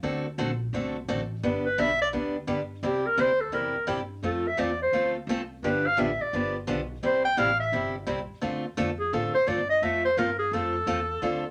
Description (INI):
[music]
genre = country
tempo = 172 BPM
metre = 4/4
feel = swing 65% on 8ths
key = F major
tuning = A4 = 440 Hz
[part]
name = picked old ladder-braced acoustic guitar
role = accompaniment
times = 0.0-11.4 s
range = C3 to A4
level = -31 LUFS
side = equal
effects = none
[part]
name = upright bass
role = bass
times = 0.0-11.5 s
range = G1 to A2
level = -39 LUFS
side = equal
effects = none
[part]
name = warm clarinet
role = second line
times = 1.7-11.5 s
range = G4 to G5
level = -28 LUFS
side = equal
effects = none
[sound]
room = moderate studio ambience, RT60 0.5 s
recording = none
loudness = -27 LUFS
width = mono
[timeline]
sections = 0.0-11.5 A section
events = clarinet solo 0.0-11.5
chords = 0.0 D7; 1.4 G; 2.8 C; 4.2 F; 5.6 G7; 7.0 C; 8.4 Dm7; 9.8 F